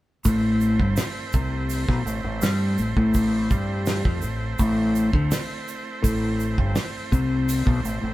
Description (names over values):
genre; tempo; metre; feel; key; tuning
psychedelic rock; 83 BPM; 4/4; straight; A minor; A4 = 440 Hz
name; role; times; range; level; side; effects
clean electric guitar; riff; 0.2-8.1 s; G2 to G3; -23 LUFS; left 1 dB; phaser
tube shaker; percussion; 0.2-8.0 s; none; -37 LUFS; right 9 dB; none
combo organ; sustained chords; 0.3-8.1 s; A3 to C5; -32 LUFS; right 3 dB; none
growling fingered electric bass; bass; 0.3-8.1 s; G1 to G2; -29 LUFS; equal; overdrive
damped 70s drum kit; drums; 0.3-7.8 s; hi-hat, kick drum, snare drum; -26 LUFS; right 1 dB; none
room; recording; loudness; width
moderate stone room reverb, RT60 1.3 s; band playing live in one room; -20 LUFS; side -16 dB against mid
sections
0.3-8.1 A section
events
none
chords
0.3 Am